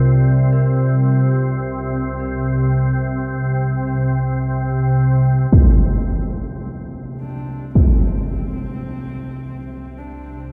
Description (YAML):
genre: dark ambient drone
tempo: free time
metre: none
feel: none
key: unclear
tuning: A4 = 440 Hz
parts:
  - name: dark analog pad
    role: sustained chords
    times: 0.0-5.5 s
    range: C4 to D5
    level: -35 LUFS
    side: equal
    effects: none
  - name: dark detuned synth bell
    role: arpeggios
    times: 0.0-5.5 s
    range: Bb4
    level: -40 LUFS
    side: equal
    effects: none
  - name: organ-like drone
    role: drone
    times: 0.0-10.5 s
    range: C2 to C3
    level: -20 LUFS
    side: equal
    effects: ensemble chorus, built-in reverb
  - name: bronze singing bowl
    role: texture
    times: 0.0-5.5 s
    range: none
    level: barely audible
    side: none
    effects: none
  - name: impact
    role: percussion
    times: 5.5-8.0 s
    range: none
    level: -19 LUFS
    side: equal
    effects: low-pass filter on sfx
  - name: dark horsehead fiddle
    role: melody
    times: 7.2-10.5 s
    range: C4 to D4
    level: -37 LUFS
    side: equal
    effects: none
room: moderate huge ambient reverb, RT60 7.6 s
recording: none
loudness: -18 LUFS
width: mono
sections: 0.0-5.5 A section; 5.5-10.5 B section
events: fade-out on analog synth pad 0.0-5.5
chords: 0.0 Csus2